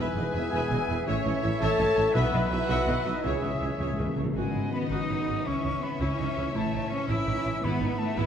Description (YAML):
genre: cinematic, heroic adventure film score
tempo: 110 BPM (dotted quarters)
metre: 6/8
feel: straight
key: C# minor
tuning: A4 = 440 Hz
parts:
  - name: rich symphonic violin section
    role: melody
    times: 0.0-8.3 s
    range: D#5 to G#5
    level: -38 LUFS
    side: left 6 dB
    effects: none
  - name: bright concert flute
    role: second line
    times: 0.0-8.3 s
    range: B4 to E6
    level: -36 LUFS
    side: left 2 dB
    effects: none
  - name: mellow clarinet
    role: second line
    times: 0.0-4.2 s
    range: G#4 to C#5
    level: -40 LUFS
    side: equal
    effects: none
  - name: warm oboe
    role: second line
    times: 0.0-4.1 s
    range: E5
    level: -38 LUFS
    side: right 2 dB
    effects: none
  - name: warm symphonic violin section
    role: second line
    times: 0.0-8.3 s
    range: B4 to A5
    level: -40 LUFS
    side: left 1 dB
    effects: none
  - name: rich symphonic viola section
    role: accompaniment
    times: 0.0-8.3 s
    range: D#4 to E5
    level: -36 LUFS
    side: equal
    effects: none
  - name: clear trombone section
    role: sustained chords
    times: 0.0-8.3 s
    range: E3 to C#4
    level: -37 LUFS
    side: right 4 dB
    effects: none
  - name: mellow French horn section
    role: sustained chords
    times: 0.0-3.8 s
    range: B3 to A4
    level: -30 LUFS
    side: left 3 dB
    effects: none
  - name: concert harp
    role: arpeggios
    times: 0.0-8.3 s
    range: E2 to G#5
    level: -37 LUFS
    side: left 8 dB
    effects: none
  - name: clear trumpet section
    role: stabs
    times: 0.0-4.2 s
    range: G#4 to C#5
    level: -36 LUFS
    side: equal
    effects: none
  - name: mellow tuba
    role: bass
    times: 0.0-4.3 s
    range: E1 to C#2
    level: -34 LUFS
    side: right 3 dB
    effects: none
  - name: rich symphonic cello section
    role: bass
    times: 0.0-8.3 s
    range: E2 to E4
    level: -34 LUFS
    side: right 2 dB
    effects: none
  - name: warm symphonic double bass section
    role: bass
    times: 0.0-8.3 s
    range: E1 to C#2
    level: -33 LUFS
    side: right 2 dB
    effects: none
  - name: timpani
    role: percussion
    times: 3.2-4.3, 7.6-8.1 s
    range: G#2 to C#3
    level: -34 LUFS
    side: equal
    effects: none
room: moderate scoring stage reverb, RT60 1.9 s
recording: dark, warm production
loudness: -25 LUFS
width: side -8 dB against mid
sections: 0.0-4.4 A section; 4.4-8.3 B section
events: timpani fill 3.2-4.4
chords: 0.0 E; 1.1 A; 2.2 Bsus4; 3.2 C#m; 4.4 G#m7; 5.5 C#m; 6.5 A; 7.6 E/G#